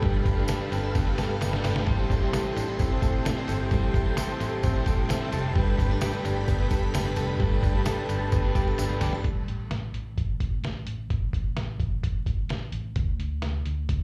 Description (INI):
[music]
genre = jangly indie pop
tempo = 130 BPM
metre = 4/4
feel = straight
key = unclear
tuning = A4 = 440 Hz
[part]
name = crunchy overdriven guitar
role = accompaniment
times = 0.0-9.3 s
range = A2 to C5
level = -37 LUFS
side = equal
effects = none
[part]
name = overdriven combo organ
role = accompaniment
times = 0.0-9.2 s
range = G4 to A5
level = -36 LUFS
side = equal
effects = none
[part]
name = string machine, full ensemble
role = sustained chords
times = 0.0-9.2 s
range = A4 to C6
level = -41 LUFS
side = equal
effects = ensemble chorus
[part]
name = direct-recorded clean electric guitar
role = arpeggios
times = 0.0-9.8 s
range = G3 to A4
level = -36 LUFS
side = equal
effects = analog chorus, tape echo
[part]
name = vintage muted fingered electric bass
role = bass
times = 0.0-14.0 s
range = F1 to A2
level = -32 LUFS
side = equal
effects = none
[part]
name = lo-fi sampler-style drum kit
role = drums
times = 0.0-14.0 s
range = hi-hat, kick drum, ride cymbal, snare drum, toms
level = -30 LUFS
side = equal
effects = none
[part]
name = tambourine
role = percussion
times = 0.3-9.1 s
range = none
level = -47 LUFS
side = equal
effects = none
[sound]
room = light reverb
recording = live gig heard through the venue's PA, club reverb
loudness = -27 LUFS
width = mono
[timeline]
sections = 0.0-9.2 A section; 9.2-14.0 B section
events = drum fill 1.0-1.9, 8.8-9.2; transistor combo organ fill 4.9-5.6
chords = 0.0 Gadd9; 1.9 Am7; 5.6 Gadd9; 9.2 N.C.